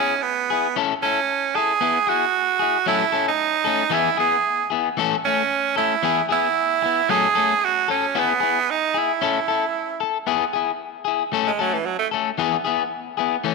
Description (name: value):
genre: highlife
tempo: 114 BPM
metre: 4/4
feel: straight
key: E major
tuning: A4 = 440 Hz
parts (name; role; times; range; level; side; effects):
- raspy tenor saxophone; melody; 0.0-12.1 s; E3 to G#4; -20 LUFS; right 9 dB; none
- electric guitar at the edge of break-up; accompaniment; 0.0-13.5 s; E3 to A4; -22 LUFS; left 12 dB; spring reverb
room: moderate echo chamber reverb, RT60 2.0 s, small room ambience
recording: 1960s-style stereo with parts hard left and right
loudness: -19 LUFS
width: side -3 dB against mid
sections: 0.0-10.3 A section; 10.3-13.5 B section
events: tenor saxophone solo 10.3-13.5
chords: 0.0 E; 0.8 A; 1.8 E; 2.9 F#m; 3.9 E; 5.0 A; 6.0 E; 7.1 F#m; 8.2 E; 9.2 A; 10.3 E; 11.3 F#m; 12.4 E